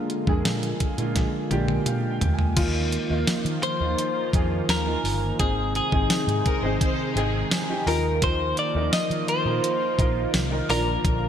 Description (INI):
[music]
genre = 1980s-style pop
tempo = 85 BPM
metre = 4/4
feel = straight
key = unclear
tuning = A4 = 440 Hz
[part]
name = direct-recorded clean electric guitar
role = melody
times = 0.0-11.3 s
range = Ab4 to Eb5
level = -26 LUFS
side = left 1 dB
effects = wide subtle chorus, digital delay
[part]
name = clear baby grand piano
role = accompaniment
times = 0.0-11.3 s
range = Db3 to Ab5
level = -29 LUFS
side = right 3 dB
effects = lush chorus
[part]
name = sweeping resonant pad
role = sustained chords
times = 0.0-11.3 s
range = C3 to F4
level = -31 LUFS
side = left 1 dB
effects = chorus
[part]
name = clean 12-bit digital drum machine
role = drums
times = 0.1-11.2 s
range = crash cymbal, hi-hat, kick drum, snare drum, tambourine, toms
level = -26 LUFS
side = equal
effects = none
[part]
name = vintage muted fingered electric bass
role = bass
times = 0.3-11.3 s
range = G1 to Eb3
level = -27 LUFS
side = equal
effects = none
[part]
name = funky polysynth comp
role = stabs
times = 2.6-11.3 s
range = Bb3 to D5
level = -36 LUFS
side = left 3 dB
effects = chorus
[part]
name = warm studio violin section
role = second line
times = 6.5-7.7 s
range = Ab4 to C5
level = -32 LUFS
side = left 3 dB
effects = digital delay
[sound]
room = moderate lush hall reverb, RT60 2.9 s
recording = bright 1980s-style digital production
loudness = -21 LUFS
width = side -9 dB against mid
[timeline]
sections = 0.0-2.6 A section; 2.6-11.3 B section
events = drum fill 1.2-2.6; grand piano fill 1.2-2.6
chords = 0.0 Bb7; 2.6 Ebsus2; 5.4 Ab; 7.9 Ebsus2; 10.7 Bb